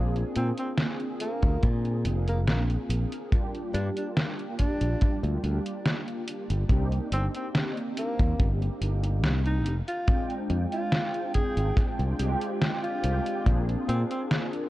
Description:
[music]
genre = vaporwave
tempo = 71 BPM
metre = 4/4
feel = straight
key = F dorian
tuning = A4 = 440 Hz
[part]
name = mellow synth brass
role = accompaniment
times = 0.0-14.7 s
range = G3 to G5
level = -33 LUFS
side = equal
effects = ensemble chorus, analog delay
[part]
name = modern bright fingered electric bass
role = bass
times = 0.0-14.0 s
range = F1 to Bb2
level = -26 LUFS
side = equal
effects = none
[part]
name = detuned 8-bit digital drum machine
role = drums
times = 0.2-14.7 s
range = hi-hat, snare drum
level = -29 LUFS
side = equal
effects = none
[part]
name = warm alto saxophone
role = melody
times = 0.4-14.2 s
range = Bb3 to Ab4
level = -35 LUFS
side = equal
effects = tape echo
[part]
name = kick drum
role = drums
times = 1.4-13.6 s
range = none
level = -24 LUFS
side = equal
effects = none
[sound]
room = little or no reverb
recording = dark, warm production, cassette tape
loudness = -25 LUFS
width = side -16 dB against mid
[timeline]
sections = 0.0-14.7 A section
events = none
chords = 0.0 Bb9; 3.3 Gm7; 6.7 Cm9; 9.7 Fm69; 13.5 Bb9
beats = 0.79 1.63 2.48 | 3.32 4.17 5.01 5.86 | 6.70 7.55 8.39 9.24 | 10.08 10.93 11.77 12.62 | 13.46 14.31

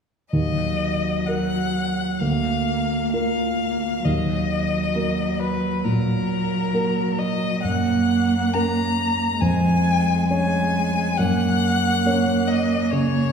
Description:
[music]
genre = classical, slow romantic movement for piano trio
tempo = 66 BPM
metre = 4/4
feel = uneven beats, rubato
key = Eb minor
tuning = A4 = 440 Hz
[part]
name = clear violin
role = melody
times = 0.3-13.3 s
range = Bb4 to Bb5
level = -25 LUFS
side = left 3 dB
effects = none
[part]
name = rich cello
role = second line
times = 0.3-13.3 s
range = Gb3 to Bb3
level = -23 LUFS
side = right 3 dB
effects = none
[part]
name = warm grand piano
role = accompaniment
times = 0.3-13.3 s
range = D2 to Db5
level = -23 LUFS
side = left 1 dB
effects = none
[sound]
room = wet recital hall reverb, RT60 1.5 s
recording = heard from further back in the room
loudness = -19 LUFS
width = side -6 dB against mid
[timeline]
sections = 0.3-13.3 A section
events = none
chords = 0.3 Ebm; 2.2 Bb/D; 4.1 Ebm; 7.6 Gb; 9.4 Db/F; 11.2 Gb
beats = | 0.33 1.27 2.21 3.14 | 4.05 4.96 5.85 6.74 | 7.64 8.54 9.41 10.29 | 11.19 12.05 12.92

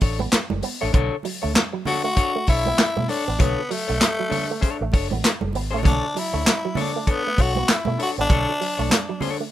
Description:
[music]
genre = funk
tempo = 98 BPM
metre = 4/4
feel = swing 60% on 16ths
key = B minor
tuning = A4 = 440 Hz
[part]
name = semi-hollow electric guitar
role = accompaniment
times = 0.0-9.4 s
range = D4 to C#5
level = -28 LUFS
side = left 6 dB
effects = wide subtle chorus
[part]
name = electric guitar with an envelope filter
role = riff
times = 0.0-9.5 s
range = F#3 to B3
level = -30 LUFS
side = right 8 dB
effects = wide subtle chorus
[part]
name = vintage muted fingered electric bass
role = bass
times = 0.0-8.9 s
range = F#1 to B2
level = -26 LUFS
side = equal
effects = none
[part]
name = warm soul drum kit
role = drums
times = 0.0-9.4 s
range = handclaps, hi-hat, kick drum, snare drum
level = -21 LUFS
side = equal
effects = none
[part]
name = congas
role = percussion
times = 0.2-9.4 s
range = none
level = -30 LUFS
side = right 6 dB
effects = none
[part]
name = growling tenor saxophone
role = melody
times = 1.9-9.4 s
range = A3 to F#4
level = -24 LUFS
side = left 2 dB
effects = none
[sound]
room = studio ambience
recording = rough home demo mix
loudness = -19 LUFS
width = side -13 dB against mid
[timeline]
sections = 0.0-9.5 A section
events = none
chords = 0.0 Bm9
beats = 0.33 | 0.94 1.55 2.17 2.78 | 3.40 4.01 4.62 5.24 | 5.85 6.46 7.07 7.69 | 8.30 8.91

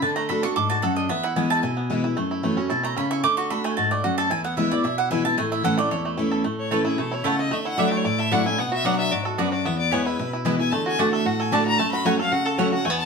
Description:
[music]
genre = bluegrass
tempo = 225 BPM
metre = 4/4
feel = straight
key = A major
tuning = A4 = 440 Hz
[part]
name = picked steel-string acoustic guitar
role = accompaniment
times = 0.0-13.1 s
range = E2 to F#4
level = -24 LUFS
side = left 1 dB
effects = none
[part]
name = bluegrass banjo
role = arpeggios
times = 0.0-13.1 s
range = E3 to A4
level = -28 LUFS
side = right 4 dB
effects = none
[part]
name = mandolin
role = stabs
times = 0.0-12.7 s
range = A3 to D6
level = -25 LUFS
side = right 4 dB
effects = none
[part]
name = clear fiddle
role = second line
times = 6.6-13.1 s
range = F#4 to B5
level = -25 LUFS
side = left 3 dB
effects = none
[sound]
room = wet studio reverb, RT60 0.7 s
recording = band playing live in one room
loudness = -20 LUFS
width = side -5 dB against mid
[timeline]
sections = 0.0-6.4 A section; 6.4-13.1 A section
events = mandolin solo 0.0-6.4; fiddle solo 6.4-13.1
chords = 0.0 D; 1.1 E; 2.2 F#m7; 3.2 D; 4.3 E; 5.4 A; 7.5 Dadd9; 8.6 Bm; 9.7 E; 10.7 D; 11.8 F#m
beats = | 0.03 0.30 0.56 0.83 | 1.10 1.37 1.64 1.90 | 2.17 2.44 2.71 2.97 | 3.24 3.51 3.78 4.04 | 4.31 4.58 4.84 5.11 | 5.38 5.65 5.91 6.18 | 6.45 6.71 6.98 7.25 | 7.52 7.78 8.05 8.32 | 8.58 8.85 9.12 9.38 | 9.65 9.92 10.19 10.45 | 10.72 10.98 11.25 11.52 | 11.78 12.05 12.32 12.58 | 12.85

